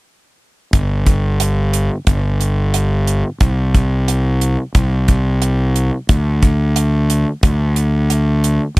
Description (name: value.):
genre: psychedelic rock.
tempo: 90 BPM.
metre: 4/4.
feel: straight.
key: unclear.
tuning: A4 = 439 Hz.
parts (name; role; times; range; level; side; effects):
fuzz fingered electric bass; bass; 0.7-8.8 s; G1 to D2; -15 LUFS; equal; overdrive.
damped 70s drum kit; drums; 0.7-8.8 s; hi-hat, kick drum; -14 LUFS; equal; none.
room: little or no reverb.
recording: none.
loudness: -13 LUFS.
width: side -22 dB against mid.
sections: 0.7-8.8 A section.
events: none.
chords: none.